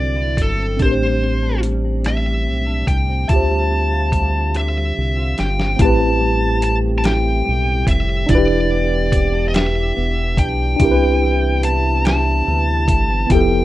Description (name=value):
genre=slow six-eight R&B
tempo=48 BPM (dotted quarters)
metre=6/8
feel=straight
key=A minor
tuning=A4 = 443 Hz
part: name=high-gain lead guitar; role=melody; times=0.0-13.6 s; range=A4 to A5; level=-21 LUFS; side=equal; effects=distortion
part: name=clean electric guitar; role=second line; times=0.0-13.6 s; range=A2 to G4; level=-27 LUFS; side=right 2 dB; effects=analog chorus
part: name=tine electric piano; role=accompaniment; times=0.0-13.6 s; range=B3 to E5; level=-21 LUFS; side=equal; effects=overdrive, fast stereo tremolo
part: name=round analog bass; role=bass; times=0.0-13.6 s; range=E1 to D2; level=-19 LUFS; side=equal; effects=none
part: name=dusty soul sampler-style drum kit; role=drums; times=0.4-13.5 s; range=hi-hat, kick drum, rim click, snare drum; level=-18 LUFS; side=equal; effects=none
part: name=clear French horn section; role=sustained chords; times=5.8-13.6 s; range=C3 to B4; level=-30 LUFS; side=left 1 dB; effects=none
room=little or no reverb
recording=rough home demo mix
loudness=-15 LUFS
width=side -15 dB against mid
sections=0.0-5.8 A section; 5.8-13.6 B section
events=drum fill 4.5-5.8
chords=0.0 D9; 0.8 Am11; 3.3 Dm11; 5.8 Am7; 8.3 Em7; 10.8 Cmaj9